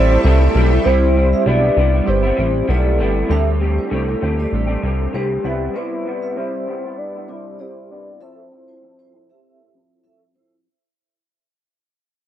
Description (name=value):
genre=indie pop, bedroom pop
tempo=98 BPM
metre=4/4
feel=swing 55% on 16ths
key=C major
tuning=A4 = 444 Hz
part: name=soft octave-layered synth lead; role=melody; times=0.0-10.1 s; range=G4 to D5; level=-22 LUFS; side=left 1 dB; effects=tremolo, analog chorus, low-pass filter, tape echo
part: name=vibraphone with soft mallets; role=second line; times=0.0-10.5 s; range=E4 to E5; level=-27 LUFS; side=right 4 dB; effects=ensemble chorus, tape echo
part: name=chorused retro synth keys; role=accompaniment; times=0.0-5.8 s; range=G3 to E5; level=-25 LUFS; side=right 6 dB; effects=tremolo, low-pass filter
part: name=electric guitar through a small old amp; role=accompaniment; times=0.0-10.7 s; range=C3 to A4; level=-23 LUFS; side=left 2 dB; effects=ensemble chorus, warbly pitch drift, low-pass filter
part: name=string machine, violins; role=sustained chords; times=0.0-0.8 s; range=G4 to A5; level=-31 LUFS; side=equal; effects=ensemble chorus
part: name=chorused synth bass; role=bass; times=0.0-5.7 s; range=G1 to D2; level=-16 LUFS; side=equal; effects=none
room=light reverb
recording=dry, close 1970s-style studio recording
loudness=-15 LUFS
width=side -11 dB against mid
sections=0.8-10.7 A section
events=fade-out 0.8-10.7; filter sweep 0.8-10.7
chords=0.0 C6; 0.8 Cmaj7; 3.3 D7sus4; 5.4 Cmaj7; 8.2 Fmaj7